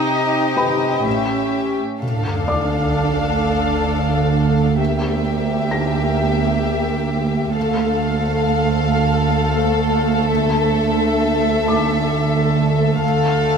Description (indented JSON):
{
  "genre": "cinematic, suspense film score",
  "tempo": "65 BPM",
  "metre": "3/4",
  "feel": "straight",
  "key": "D minor",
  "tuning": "A4 = 443 Hz",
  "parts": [
    { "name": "warm studio violin section", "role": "melody", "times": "0.0-13.6 s", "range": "Eb5 to F5", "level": "-24 LUFS", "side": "left 2 dB", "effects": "none" },
    { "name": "warm studio violin section", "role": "second line", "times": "0.0-13.6 s", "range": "G4 to A4", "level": "-22 LUFS", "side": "left 4 dB", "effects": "none" },
    { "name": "dark studio viola section", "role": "accompaniment", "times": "0.0-13.6 s", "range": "A3 to Eb4", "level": "-24 LUFS", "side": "right 1 dB", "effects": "none" },
    { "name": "dark studio double bass section", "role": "bass", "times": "0.0-13.6 s", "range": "A1 to D2", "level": "-21 LUFS", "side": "right 3 dB", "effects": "none" },
    { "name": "dark symphonic cello section", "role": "bass", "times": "0.0-13.6 s", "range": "D2 to C3", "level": "-23 LUFS", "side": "right 6 dB", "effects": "none" },
    { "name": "felt-muted upright piano", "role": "texture", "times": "0.6-13.6 s", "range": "B4 to Bb6", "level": "-28 LUFS", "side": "left 3 dB", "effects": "none" },
    { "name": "sub drop", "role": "sound effects", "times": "2.0-4.8 s", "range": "none", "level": "-27 LUFS", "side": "equal", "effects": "none" }
  ],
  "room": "moderate scoring stage reverb, RT60 1.5 s",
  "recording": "minimal, uncompressed stereo recording",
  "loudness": "-16 LUFS",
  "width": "side -6 dB against mid",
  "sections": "0.0-2.0 A section; 2.0-13.6 B section",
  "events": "impact 2.0-4.8",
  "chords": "0.0 Cm; 1.1 A7; 2.0 Dm; 4.8 Edim/D; 7.6 Dm"
}